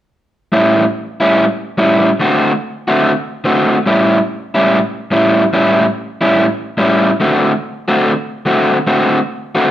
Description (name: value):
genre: blues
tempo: 144 BPM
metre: 4/4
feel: swing 63% on 8ths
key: A mixolydian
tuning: A4 = 440 Hz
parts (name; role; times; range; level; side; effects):
- crunchy overdriven guitar; solo; 0.5-9.7 s; A2 to F#4; -11 LUFS; equal; none
room: moderate large studio reverb, RT60 1.1 s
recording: band playing live in one room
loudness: -12 LUFS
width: side -12 dB against mid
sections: 0.5-9.7 A section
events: none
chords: 0.5 A7; 2.2 D7; 3.9 A7; 7.2 D7